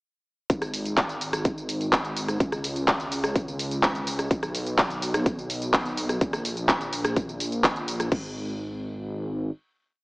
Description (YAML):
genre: EDM, festival progressive house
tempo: 126 BPM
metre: 4/4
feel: straight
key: G# minor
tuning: A4 = 438 Hz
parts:
  - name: wide detuned saw bass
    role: bass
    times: 0.5-9.5 s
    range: G#1 to C#2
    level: -30 LUFS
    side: equal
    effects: chorus, sidechain pumping
  - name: big-room dance drum kit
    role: drums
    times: 0.5-8.2 s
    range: crash cymbal, handclaps, hi-hat, rim click, tambourine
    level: -26 LUFS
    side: equal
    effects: none
  - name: electronic kick drum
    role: drums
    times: 0.5-8.2 s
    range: none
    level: -26 LUFS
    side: equal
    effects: none
room: moderate plate reverb, RT60 1.6 s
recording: dreamy mix soaked in reverb, small speaker sound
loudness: -24 LUFS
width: side -25 dB against mid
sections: 0.5-8.1 drop; 8.1-10.0 final note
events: drop 0.5-8.1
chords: none